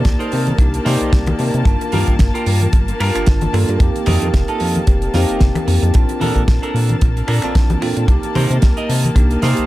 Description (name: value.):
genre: nu-disco, nu disco.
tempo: 112 BPM.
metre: 4/4.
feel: swing 55% on 16ths.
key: unclear.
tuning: A4 = 441 Hz.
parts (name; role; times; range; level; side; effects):
bell-like tine electric piano; accompaniment; 0.0-9.7 s; Bb3 to A5; -22 LUFS; equal; phaser, sidechain pumping, dub echo.
clear studio string section; sustained chords; 0.0-9.7 s; Bb3 to A5; -26 LUFS; left 1 dB; sidechain pumping.
chorused synth bass; bass; 0.0-9.7 s; F1 to C3; -18 LUFS; equal; sidechain pumping.
damped 70s drum kit; drums; 0.0-9.7 s; finger snaps, hi-hat, snare drum; -25 LUFS; right 1 dB; small room ambience, dub echo.
kick drum; drums; 0.1-9.3 s; none; -14 LUFS; equal; small room ambience.
clean electric guitar; riff; 0.2-9.7 s; D4 to Eb5; -25 LUFS; right 2 dB; wide subtle chorus, dub echo.
congas; percussion; 0.5-9.1 s; none; -26 LUFS; left 2 dB; none.
room: light reverb, studio reverb.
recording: echo-heavy mix.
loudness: -13 LUFS.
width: side -16 dB against mid.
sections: 0.0-9.7 A section.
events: none.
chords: 0.0 Cm7; 1.7 Gm7; 3.8 F7sus4; 5.9 Bbmaj7; 8.1 Cm7.